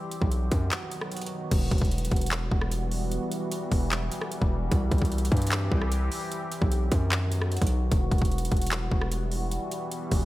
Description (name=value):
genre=hip hop, trap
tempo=150 BPM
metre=4/4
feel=half-time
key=E harmonic minor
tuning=A4 = 440 Hz
part: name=deep dark ambient pad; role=sustained chords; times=0.0-10.2 s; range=D#3 to G4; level=-33 LUFS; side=equal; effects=chorus, built-in reverb
part: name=trap drum kit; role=drums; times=0.1-10.2 s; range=crash cymbal, handclaps, hi-hat, kick drum, rim click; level=-27 LUFS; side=equal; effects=none
part: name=hard-hitting 808-style bass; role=bass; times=0.2-10.2 s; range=E1 to G2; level=-27 LUFS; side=equal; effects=none
room=light reverb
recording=none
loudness=-25 LUFS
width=side -16 dB against mid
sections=0.0-1.5 A section; 1.5-10.2 B section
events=break 0.7-1.5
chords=0.0 B; 1.5 Emadd9; 4.7 C; 6.3 B; 7.9 Emadd9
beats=0.32 0.71 1.11 | 1.51 1.92 2.31 2.71 | 3.12 3.52 3.92 4.32 | 4.71 5.12 5.51 5.92 | 6.32 6.71 7.12 7.51 | 7.92 8.31 8.71 9.12 | 9.52 9.91